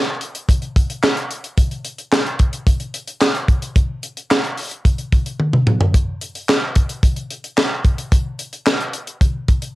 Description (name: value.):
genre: funk.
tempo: 110 BPM.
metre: 4/4.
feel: straight.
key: none.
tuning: none.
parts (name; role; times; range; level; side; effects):
tight funk drum kit; drums; 0.2-9.7 s; handclaps, hi-hat, kick drum, snare drum, toms; -16 LUFS; equal; cassette tape.
room: moderate small room reverb, RT60 0.5 s.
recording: home recording on cassette.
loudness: -16 LUFS.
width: side -19 dB against mid.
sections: 0.0-5.9 A section; 5.9-9.8 B section.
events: drum fill 5.4-5.9.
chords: none.